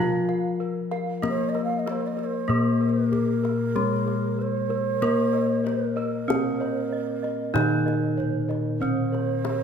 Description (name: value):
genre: Javanese gamelan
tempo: 48 BPM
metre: 4/4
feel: straight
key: Bb slendro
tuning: A4 = 440 Hz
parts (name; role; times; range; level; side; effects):
- gamelan-type bronze metallophone; melody; 0.0-9.6 s; Ab3-40c to F4+20c; -27 LUFS; left 1 dB; none
- gamelan-type bronze metallophone; accompaniment; 0.0-9.6 s; Eb3-20c to Bb3; -29 LUFS; left 2 dB; none
- gamelan-type bossed gongs; arpeggios; 0.0-9.5 s; Ab4-40c to Eb5-20c; -36 LUFS; left 7 dB; none
- gamelan-type bronze metallophone; arpeggios; 0.0-9.6 s; Ab4-40c to F5+20c; -36 LUFS; right 5 dB; none
- gamelan-type bossed gongs; bass; 0.0-9.6 s; Bb2 to Bb4; -29 LUFS; left 2 dB; none
- kendang; percussion; 0.3-9.6 s; none; -34 LUFS; left 5 dB; none
- breathy hollow bass bansuri; second line; 1.3-9.6 s; Bb4 to F5; -30 LUFS; right 7 dB; slapback echo
room: moderate scoring stage reverb, RT60 1.6 s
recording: none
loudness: -22 LUFS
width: side -7 dB against mid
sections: 0.0-9.6 A section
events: none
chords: none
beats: 1.23 2.49 3.75 | 5.01 6.27 7.54 8.80